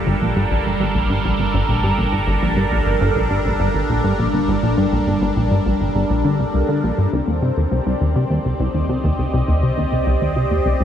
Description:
ambient, sequencer-driven space music; 102 BPM; 4/4; straight; A4 = 441 Hz
phased analog pad; sustained chords; 0.0-10.8 s; G3 to Eb5; -21 LUFS; right 1 dB; phaser, chorus, shimmer reverb
round analog bass; bass; 0.0-10.8 s; G1 to C2; -28 LUFS; equal
bubbling stepped-filter texture; texture; 0.0-10.8 s; Bb3 to C5; -33 LUFS; equal
plucky analog bass; riff; 0.1-10.8 s; G1 to D3; -18 LUFS; equal; analog chorus, tape echo
wet huge ambient reverb, RT60 7.3 s; in a vast, echoing space; -16 LUFS; side -9 dB against mid
0.0-10.8 A section
0.0 Gm; 7.1 Cm7
| 0.07 0.66 1.24 1.83 | 2.42 3.01 3.60 4.18 | 4.77 5.36 5.95 6.54 | 7.13 7.71 8.30 8.89 | 9.48 10.07 10.66

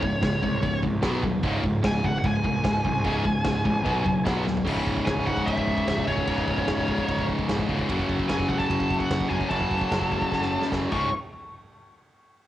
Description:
heavy metal; 149 BPM; 4/4; straight; A4 = 442 Hz
high-gain lead guitar; melody; 0.0-11.1 s; C#5 to C#6; -29 LUFS; equal; distortion, cassette tape, analog delay
distorted electric guitar; riff; 0.0-11.1 s; C#2 to B3; -27 LUFS; left 4 dB; overdrive, cassette tape
tight distorted guitar; riff; 0.0-11.1 s; C#2 to B3; -30 LUFS; right 6 dB; distortion, cassette tape
fuzz picked electric bass; bass; 0.0-11.1 s; C#1 to B#1; -31 LUFS; right 1 dB; overdrive
big rock drum kit; drums; 0.0-11.0 s; crash cymbal, kick drum, ride cymbal, snare drum, toms; -29 LUFS; right 1 dB; cassette tape
small room ambience; home recording on cassette; -22 LUFS; side -13 dB against mid
0.0-4.7 A section; 4.7-11.1 B section; 11.1-12.5 C section
drum fill 4.5, 10.3-11.1
0.0 C#5; 1.0 B5; 1.4 C#5; 3.9 B5; 4.7 C#5; 7.9 F#m; 10.9 C#5; 11.1 N.C.
0.23 0.63 1.03 | 1.44 1.84 2.24 2.65 | 3.05 3.45 3.85 4.26 | 4.66 5.06 5.47 5.87 | 6.27 6.68 7.08 7.49 | 7.89 8.29 8.70 9.10 | 9.50 9.91 10.31 10.71

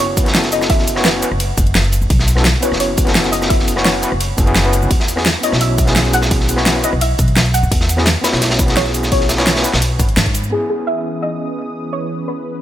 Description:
liquid drum and bass; 171 BPM; 4/4; straight; A4 = 439 Hz
soft round pluck; melody; 0.0-12.6 s; G#4 to F#5; -22 LUFS; equal; analog chorus, dub echo
overdriven tine electric piano; accompaniment; 0.0-12.6 s; B3 to C#5; -20 LUFS; equal; medium tremolo, low-pass filter, dub echo
upright bass; bass; 0.0-10.5 s; F#1 to G#2; -18 LUFS; equal; tube saturation
pop drum kit; drums; 0.0-12.5 s; cabasa, crash cymbal, hi-hat, ride cymbal, rim click, snare drum; -19 LUFS; equal; low-pass filter on hats, low-pass filter on perc, low-pass filter on snare, low-pass filter on cymbals
crunchy breakbeat drum kit; drums; 0.2-10.4 s; hi-hat, snare drum; -20 LUFS; equal; high-pass filter on hats, high-pass filter on snare, high-pass filter on room
electronic kick drum; drums; 0.2-10.3 s; -17 LUFS; equal
warm analog pad; sustained chords; 10.5-12.6 s; E3 to D#6; -25 LUFS; right 1 dB; chorus, sidechain pumping
light reverb; -13 LUFS; side -12 dB against mid
0.0-10.5 A section; 10.5-12.6 B section
drop 0.0-10.5; band accent 10.2; filter sweep on tine electric piano 10.5-12.6
0.0 F#m7; 4.9 E69; 10.5 C#m9
0.35 | 0.70 1.05 1.40 1.75 | 2.10 2.45 2.80 3.15 | 3.50 3.85 4.21 4.56 | 4.91 5.26 5.61 5.96 | 6.31 6.66 7.01 7.36 | 7.71 8.06 8.42 8.77 | 9.12 9.47 9.82 10.17 | 10.52 10.87 11.22 11.57 | 11.93 12.28

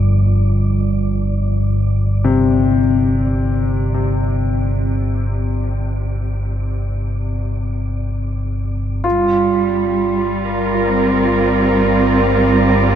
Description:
dark ambient drone; free time; G minor; A4 = 440 Hz
dark grand piano; arpeggios; 0.0-13.0 s; F2 to F4; -21 LUFS; left 2 dB; tape echo
deep rumbling drone; drone; 0.0-13.0 s; G1 to G2; -18 LUFS; equal; built-in reverb
wind-like tuned noise texture; texture; 0.0-13.0 s; D5; -31 LUFS; left 1 dB; built-in reverb
rich symphonic cello section; sustained chords; 9.1-13.0 s; G3 to Bb4; -14 LUFS; right 2 dB
wet huge ambient reverb, RT60 7.3 s; dreamy mix soaked in reverb; -15 LUFS; side -9 dB against mid
0.0-9.0 A section; 9.0-13.0 B section
fade-out on synth texture 0.0-9.0
0.0 G7sus4; 9.0 Gm
free time

